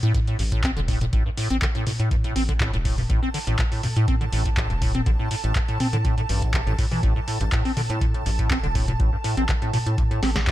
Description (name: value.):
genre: acid house.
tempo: 122 BPM.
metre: 4/4.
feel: straight.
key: A minor.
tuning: A4 = 441 Hz.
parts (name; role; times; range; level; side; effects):
acid bass, square; riff; 0.0-10.5 s; G2 to C4; -26 LUFS; equal; tube saturation, wide subtle chorus, sidechain pumping, dub echo.
round analog bass; bass; 0.0-10.5 s; E1 to A2; -26 LUFS; equal; sidechain pumping.
booming analog drum machine; drums; 0.0-10.5 s; handclaps, hi-hat, snare drum, toms; -29 LUFS; left 1 dB; small room reverb.
electronic kick drum; drums; 0.1-10.5 s; none; -24 LUFS; equal; small room reverb.
granular cloud pad; texture; 2.4-10.5 s; A5; -34 LUFS; right 4 dB; built-in reverb, sidechain pumping.
room: digital ambience.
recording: none.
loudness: -20 LUFS.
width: side -14 dB against mid.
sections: 0.0-10.5 A section.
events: fade-in on ambient pad 0.0-10.5.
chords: 0.0 A5.